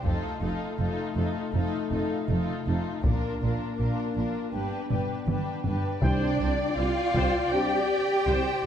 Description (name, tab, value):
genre	cinematic, epic orchestral film score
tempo	80 BPM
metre	4/4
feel	straight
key	C minor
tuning	A4 = 440 Hz
part	warm symphonic violin section	melody	0.0-8.7 s	A4 to G5	-37 LUFS	left 2 dB	none
part	warm symphonic violin section	second line	0.0-8.7 s	F4 to G5	-36 LUFS	left 1 dB	none
part	rich symphonic viola section	accompaniment	0.0-8.7 s	D4 to D5	-37 LUFS	right 1 dB	none
part	rich symphonic double bass section	bass	0.0-8.3 s	F1 to C2	-31 LUFS	right 2 dB	none
part	taiko ensemble	drums	0.0-7.9 s	none	-30 LUFS	left 1 dB	none
part	mellow French horn section	sustained chords	0.1-7.8 s	A3 to Eb4	-34 LUFS	left 5 dB	none
part	warm symphonic cello section	bass	0.1-8.7 s	F2 to G4	-31 LUFS	right 1 dB	none
part	small flute group	second line	6.0-8.7 s	D5 to G5	-33 LUFS	left 1 dB	none
part	warm trombone section	sustained chords	6.0-7.8 s	C3 to G3	-38 LUFS	right 3 dB	none
part	warm trumpet	stabs	6.0-7.8 s	G5	-37 LUFS	equal	none
part	mellow tuba	bass	6.0-8.4 s	C2	-34 LUFS	right 2 dB	none
part	timpani	percussion	6.0-7.1 s	C3	-32 LUFS	left 1 dB	none
room	moderate scoring stage reverb, RT60 1.9 s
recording	dark, warm production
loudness	-25 LUFS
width	side -9 dB against mid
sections	0.0-6.0 A section; 6.0-8.7 B section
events	build-up 0.0-6.0; drum fill 4.9-6.0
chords	0.0 F7; 3.0 Bb; 4.5 G; 6.0 Csus2